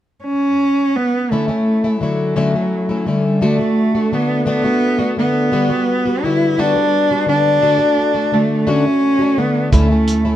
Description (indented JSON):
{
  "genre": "acoustic folk duo or small band",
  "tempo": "57 BPM (dotted quarters)",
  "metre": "6/8",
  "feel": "straight",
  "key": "D major",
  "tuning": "A4 = 440 Hz",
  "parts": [
    { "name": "warm cello", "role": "melody", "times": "0.2-10.4 s", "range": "F#3 to E4", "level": "-15 LUFS", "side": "right 1 dB", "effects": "none" },
    { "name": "fingerpicked plugged-in twelve-string acoustic guitar", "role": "accompaniment", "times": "1.3-10.4 s", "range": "D3 to F#4", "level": "-18 LUFS", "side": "left 3 dB", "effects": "none" },
    { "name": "upright bass", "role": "bass", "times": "9.7-10.4 s", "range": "D2", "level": "-16 LUFS", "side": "right 1 dB", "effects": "none" },
    { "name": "cloth-damped thuddy drum kit", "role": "drums", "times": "9.7-10.2 s", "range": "hi-hat, kick drum", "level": "-17 LUFS", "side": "right 1 dB", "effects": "none" }
  ],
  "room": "moderate large studio reverb, RT60 1.3 s",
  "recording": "dark, warm production",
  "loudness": "-14 LUFS",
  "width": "side -12 dB against mid",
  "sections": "0.0-1.3 A section; 1.3-10.4 B section",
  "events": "none",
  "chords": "0.0 N.C.; 1.3 A/D; 3.4 D; 5.5 Gmaj7/D; 7.6 D; 9.7 A/D",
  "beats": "0.25 | 1.30 2.36 | 3.41 4.47 | 5.52 6.57 | 7.62 8.67 | 9.72"
}